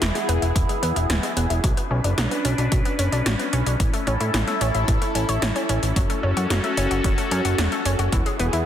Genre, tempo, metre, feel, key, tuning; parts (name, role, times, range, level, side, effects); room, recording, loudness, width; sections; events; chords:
synthwave; 111 BPM; 4/4; straight; F# minor; A4 = 440 Hz
phased analog pad; sustained chords; 0.0-8.7 s; B3 to B4; -26 LUFS; left 1 dB; phaser, chorus, sidechain pumping, shimmer reverb
analog pluck; arpeggios; 0.0-8.6 s; E3 to C#5; -28 LUFS; left 2 dB; chorus, digital delay, shimmer reverb
fat analog bass; bass; 0.0-8.6 s; D1 to A2; -23 LUFS; equal
80s electronic pad drums; drums; 0.0-8.6 s; hi-hat, snare drum; -27 LUFS; equal
electronic kick drum; drums; 0.6-8.2 s; -23 LUFS; equal
moderate concert hall reverb, RT60 2.0 s; dense, heavily limited modern master; -19 LUFS; side -10 dB against mid
0.0-8.7 A section
0.0 E; 1.6 Bmadd9; 3.8 A; 6.0 F#m; 8.1 E